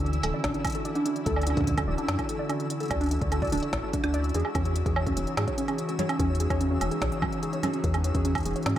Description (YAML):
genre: IDM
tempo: 146 BPM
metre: 4/4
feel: straight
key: D lydian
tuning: A4 = 436 Hz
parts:
  - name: hollow soft pad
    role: sustained chords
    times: 0.0-8.8 s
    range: D3 to G#4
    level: -34 LUFS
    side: left 1 dB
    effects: chorus, vintage 12-bit sampler grit, shimmer reverb
  - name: warbly dusty pluck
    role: arpeggios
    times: 0.0-8.8 s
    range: C#4 to D5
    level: -30 LUFS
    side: right 1 dB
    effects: chorus, analog delay, shimmer reverb
  - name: woody FM bass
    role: bass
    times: 0.0-8.7 s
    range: D1 to G#2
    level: -28 LUFS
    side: left 1 dB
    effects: none
  - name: organic electronic drum kit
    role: drums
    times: 0.0-8.8 s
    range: congas, hi-hat, snare drum, woodblock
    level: -33 LUFS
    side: right 2 dB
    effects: overdrive, analog delay
  - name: flickering grainy texture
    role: texture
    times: 0.0-8.8 s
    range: E3 to E6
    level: -38 LUFS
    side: left 2 dB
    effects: built-in reverb, shimmer reverb
  - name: electronic kick drum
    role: drums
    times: 0.4-8.8 s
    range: none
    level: -33 LUFS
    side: left 1 dB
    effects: overdrive
room: moderate spring reverb, RT60 1.6 s, digital ambience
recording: echo-heavy mix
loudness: -25 LUFS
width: side -12 dB against mid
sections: 0.0-8.8 A section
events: none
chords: 0.0 Dmaj9; 4.3 Emaj9